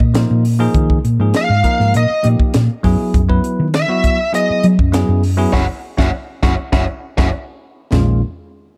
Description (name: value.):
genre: electric jazz fusion.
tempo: 100 BPM.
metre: 4/4.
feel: straight.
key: unclear.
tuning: A4 = 439 Hz.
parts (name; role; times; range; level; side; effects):
hollow-body short-scale fingered electric bass; bass; 0.0-8.2 s; Gb1 to Gb3; -17 LUFS; equal; none.
tight funk drum kit; drums; 0.0-8.1 s; hi-hat, kick drum, snare drum, toms; -20 LUFS; equal; none.
bell-like tine electric piano; accompaniment; 0.1-8.2 s; Eb3 to Cb5; -22 LUFS; equal; none.
bluesy overdriven lead guitar; melody; 1.4-7.3 s; Db5 to Gb5; -21 LUFS; equal; distortion, slapback echo.
room: little or no reverb.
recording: dark, warm production.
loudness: -15 LUFS.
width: mono.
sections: 0.0-7.9 A section.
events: lead electric guitar solo 0.0-7.9; band accent 5.5-7.9; drum fill 7.3-7.9.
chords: 0.0 Bb7sus4; 2.8 Gb9sus4; 7.9 Bbm.